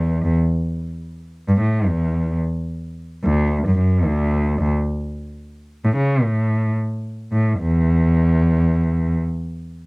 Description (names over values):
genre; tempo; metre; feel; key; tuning
folktronica; 110 BPM; 4/4; swing 56% on 16ths; unclear; A4 = 441 Hz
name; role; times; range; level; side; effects
rich cello; bass; 0.0-9.2 s; D2 to C#3; -18 LUFS; equal; none
room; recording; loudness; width
little or no reverb; home recording on cassette; -17 LUFS; side -30 dB against mid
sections
0.0-7.6 A section; 7.6-9.9 B section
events
none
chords
none